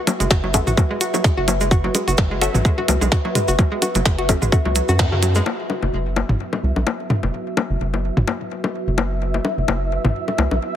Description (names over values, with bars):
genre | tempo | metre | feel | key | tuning
minimal techno | 128 BPM | 4/4 | swing 56% on 16ths | unclear | A4 = 438 Hz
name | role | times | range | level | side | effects
deep dark ambient pad | texture | 0.0-10.8 s | F#4 to E5 | -27 LUFS | equal | chorus, built-in reverb, sidechain pumping
hollow square pluck | riff | 0.1-5.4 s | C#3 to F#4 | -24 LUFS | right 1 dB | chorus, sidechain pumping, digital delay
minimal click drum kit | drums | 0.1-5.3 s | hi-hat, snare drum | -24 LUFS | right 1 dB | none
cabasa | percussion | 0.1-5.4 s | none | -28 LUFS | right 5 dB | none
electronic bongos and toms | percussion | 0.1-10.6 s | none | -23 LUFS | left 3 dB | overdrive, ping-pong delay
rubbery square bass | bass | 0.2-10.6 s | F#1 to F#2 | -21 LUFS | equal | sidechain pumping
electronic kick drum | drums | 0.3-5.1 s | none | -18 LUFS | equal | none
filtered dub chord stab | stabs | 0.5-4.4 s | C#4 to E5 | -26 LUFS | left 5 dB | phaser, analog chorus, ping-pong delay
flickering grainy texture | texture | 5.9-10.8 s | E5 | -30 LUFS | equal | built-in reverb, sidechain pumping
room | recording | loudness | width
light reverb, digital ambience | heavily compressed radio sound, multiband compression | -17 LUFS | side -10 dB against mid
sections
0.0-5.5 A section; 5.5-10.8 B section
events
drop 0.0-5.5; band accent 5.0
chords
0.0 F#m7; 5.5 F#7(no3)